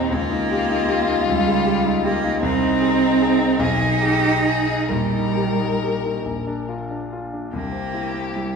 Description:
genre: classical, slow romantic movement for piano trio.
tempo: 43-53 BPM (dotted quarters).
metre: 6/8.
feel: rubato.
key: Eb major.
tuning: A4 = 441 Hz.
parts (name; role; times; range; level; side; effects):
rich violin; melody; 0.0-8.6 s; Eb4 to Bb4; -24 LUFS; left 6 dB; none.
bright cello; second line; 0.0-8.6 s; G3 to Eb4; -21 LUFS; right 5 dB; none.
clear concert grand piano; accompaniment; 0.0-8.6 s; Bb1 to Ab4; -23 LUFS; left 3 dB; none.
room: wet scoring stage reverb, RT60 1.8 s.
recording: heard from further back in the room.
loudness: -18 LUFS.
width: side -5 dB against mid.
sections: 0.0-8.6 A section.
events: none.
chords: 0.1 Eb7/Db; 2.4 Ab/C; 3.6 Abm/Cb; 4.9 Eb/Bb; 6.2 Bb; 7.5 C7.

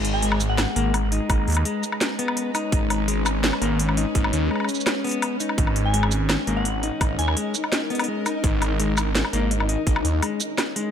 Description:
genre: half-time drum and bass.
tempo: 168 BPM.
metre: 4/4.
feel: half-time.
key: G# minor.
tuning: A4 = 440 Hz.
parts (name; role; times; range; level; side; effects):
bowed-like drone; sustained chords; 0.0-10.9 s; G#3 to B4; -29 LUFS; left 2 dB; built-in reverb, sidechain pumping.
phased detuned saw bass; bass; 0.0-10.2 s; G#1 to D#2; -23 LUFS; right 1 dB; phaser.
drum and bass drum kit; drums; 0.0-10.8 s; hi-hat, shaker, snare drum, woodblock; -25 LUFS; equal; none.
flickering grainy texture; texture; 0.1-10.9 s; D#4 to A#5; -34 LUFS; left 2 dB; built-in reverb.
soft synth bell; melody; 0.1-1.0, 5.9-7.3 s; F#5 to G#5; -31 LUFS; left 1 dB; chorus, phaser, digital delay.
clean electric guitar; arpeggios; 0.2-10.9 s; G#3 to D#4; -29 LUFS; left 4 dB; digital delay.
electronic kick drum; drums; 1.3-9.9 s; none; -23 LUFS; right 1 dB; none.
room: light reverb.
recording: none.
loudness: -20 LUFS.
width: side -8 dB against mid.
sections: 0.0-10.9 A section.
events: none.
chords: 0.0 G#m.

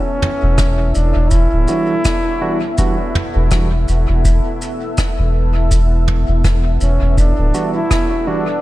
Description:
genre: ambient dub.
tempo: 82 BPM.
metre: 4/4.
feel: swing 56% on 16ths.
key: E dorian.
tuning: A4 = 441 Hz.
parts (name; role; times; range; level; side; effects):
warm trombone; melody; 0.0-8.6 s; B3 to E4; -22 LUFS; equal; dub echo.
granular cloud pad; sustained chords; 0.0-8.6 s; B3 to F#5; -24 LUFS; equal; built-in reverb.
soft brush drum kit; drums; 0.2-8.1 s; rim click, shaker, toms; -24 LUFS; equal; dub echo.
soft dub sub bass; bass; 0.4-7.5 s; D1 to E1; -14 LUFS; equal; none.
electronic kick drum; drums; 0.6-8.1 s; none; -18 LUFS; equal; overdrive.
barky tine electric piano; stabs; 1.7-8.4 s; E3 to F#4; -24 LUFS; right 3 dB; low-pass filter, dub echo.
room: studio ambience.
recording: none.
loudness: -13 LUFS.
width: side -16 dB against mid.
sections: 0.0-8.6 A section.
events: filter sweep on tine electric piano 0.0-8.6.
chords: 0.0 Em9.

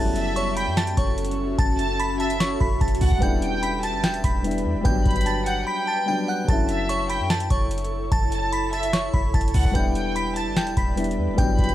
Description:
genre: hip hop, trap.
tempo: 147 BPM.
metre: 4/4.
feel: half-time.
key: F# phrygian.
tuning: A4 = 441 Hz.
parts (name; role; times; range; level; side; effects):
glassy synth bell; melody; 0.0-11.7 s; C#5 to B6; -28 LUFS; right 1 dB; chorus.
dark grand piano; accompaniment; 0.0-11.7 s; F#3 to E4; -29 LUFS; left 3 dB; none.
ethereal airy pad; sustained chords; 0.0-11.7 s; C#4 to G5; -30 LUFS; right 1 dB; ensemble chorus, built-in reverb.
clean 808-style bass; bass; 0.0-11.7 s; E1 to F#2; -26 LUFS; equal; none.
warm studio violin section; second line; 0.2-11.7 s; E5 to B5; -29 LUFS; equal; tape echo.
booming analog drum machine; drums; 0.2-11.7 s; hi-hat, kick drum, snare drum; -24 LUFS; equal; none.
room: little or no reverb.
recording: dry, gritty hardware recording, vinyl crackle.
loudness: -20 LUFS.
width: side -13 dB against mid.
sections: 0.0-11.7 A section.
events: break 5.7-6.5.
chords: 0.0 F#m7; 3.2 Em7; 4.9 Gmaj7; 6.5 F#m7; 9.7 Em7.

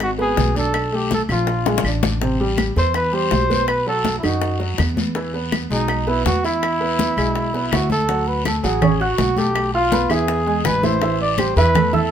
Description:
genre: Afro-Cuban jazz.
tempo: 163 BPM.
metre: 4/4.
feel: straight.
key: E major.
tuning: A4 = 439 Hz.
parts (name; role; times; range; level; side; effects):
breathy trumpet; melody; 0.0-12.1 s; D#4 to D5; -21 LUFS; equal; none.
warm upright piano; accompaniment; 0.0-12.1 s; C3 to F#6; -23 LUFS; right 2 dB; none.
upright bass; bass; 0.0-12.1 s; G#1 to F#2; -23 LUFS; equal; none.
bongos; percussion; 0.0-12.1 s; none; -26 LUFS; left 7 dB; none.
claves; percussion; 0.0-11.9 s; none; -29 LUFS; left 2 dB; none.
congas; percussion; 0.0-12.1 s; none; -24 LUFS; right 1 dB; none.
guiro; percussion; 0.0-12.1 s; none; -31 LUFS; left 5 dB; none.
room: moderate studio reverb, RT60 0.8 s.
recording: minimal, uncompressed stereo recording.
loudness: -16 LUFS.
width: side -9 dB against mid.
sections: 0.0-8.1 A section; 8.1-12.1 B section.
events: drum fill 1.7-2.2.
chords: 0.0 C#7(no3) (rootless); 0.7 Bm7b5; 1.5 A#7; 2.2 Am7; 3.7 B; 5.2 E; 8.1 Dmaj7; 9.6 G13/B; 10.3 E; 11.0 Asus2.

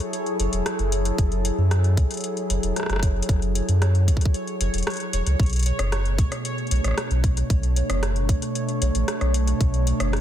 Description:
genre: IDM.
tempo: 114 BPM.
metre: 4/4.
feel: straight.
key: F# minor.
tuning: A4 = 440 Hz.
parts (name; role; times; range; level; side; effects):
warbly tape-like pad; sustained chords; 0.0-10.2 s; B2 to C#5; -28 LUFS; equal; chorus, built-in reverb, vintage 12-bit sampler grit.
booming analog drum machine; drums; 0.0-10.2 s; hi-hat, rim click; -29 LUFS; left 2 dB; ping-pong delay.
pulsing gated texture; texture; 0.0-10.2 s; C#5; -34 LUFS; right 1 dB; chorus, built-in reverb, sidechain pumping.
warm sub bass; bass; 0.4-10.2 s; E1 to F#2; -22 LUFS; equal; tube saturation.
electronic kick drum; drums; 1.2-9.7 s; none; -21 LUFS; equal; none.
room: little or no reverb.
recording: dense, heavily limited modern master.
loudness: -20 LUFS.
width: side -11 dB against mid.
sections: 0.0-10.2 A section.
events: none.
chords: 0.0 F#m9; 5.4 Bm9.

